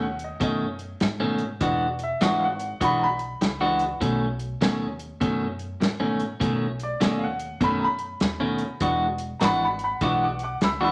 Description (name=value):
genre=electric blues shuffle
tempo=100 BPM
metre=4/4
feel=swing 63% on 8ths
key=B mixolydian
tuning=A4 = 443 Hz
part: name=clear upright piano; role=accompaniment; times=0.0-10.9 s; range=D5 to E6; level=-31 LUFS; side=equal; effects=none
part: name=clean electric guitar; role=riff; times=0.0-10.9 s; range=B2 to F#4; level=-27 LUFS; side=equal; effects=none
part: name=upright bass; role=bass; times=0.0-10.9 s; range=E1 to G#2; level=-37 LUFS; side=equal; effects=none
part: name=warm soul drum kit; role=drums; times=0.2-10.8 s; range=hi-hat, kick drum, snare drum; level=-29 LUFS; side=equal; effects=none
room=moderate large studio reverb, RT60 0.9 s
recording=none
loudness=-25 LUFS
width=mono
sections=0.0-10.9 A section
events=none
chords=0.0 B9; 1.6 E9; 4.0 B9; 8.8 E9